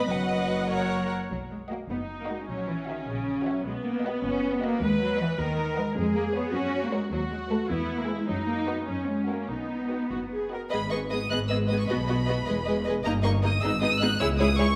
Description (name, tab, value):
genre	quick classical-period movement for string orchestra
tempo	103 BPM (dotted quarters)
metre	6/8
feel	straight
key	B major, G# minor from 10.7 s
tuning	A4 = 440 Hz
part	rich studio violin section	melody	0.0-14.8 s	F#4 to F#6	-34 LUFS	equal	none
part	rich studio violin section	second line	0.0-14.7 s	F#4 to F#5	-35 LUFS	equal	none
part	bright studio viola section	accompaniment	0.0-14.7 s	G#3 to C#5	-33 LUFS	equal	none
part	rich studio cello section	bass	0.0-14.7 s	C#2 to C#4	-32 LUFS	equal	none
part	rich studio double bass section	bass	0.0-14.7 s	E1 to F#2	-35 LUFS	equal	none
room	moderate concert hall reverb, RT60 1.8 s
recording	none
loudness	-28 LUFS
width	mono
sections	0.0-1.3 A section; 1.3-10.7 B section; 10.7-14.8 A section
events	none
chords	0.1 B/F#; 0.7 F#; 1.3 B; 2.5 F#7/A#; 3.6 B; 4.8 B/D#; 6.0 C#7/E#; 6.5 F#; 7.1 B7/D#; 7.7 E; 8.3 B/F#; 8.9 F#7; 9.5 B; 10.7 G#m; 11.9 B; 12.5 Emaj7; 13.1 D#/G; 13.6 G#m; 14.2 C#m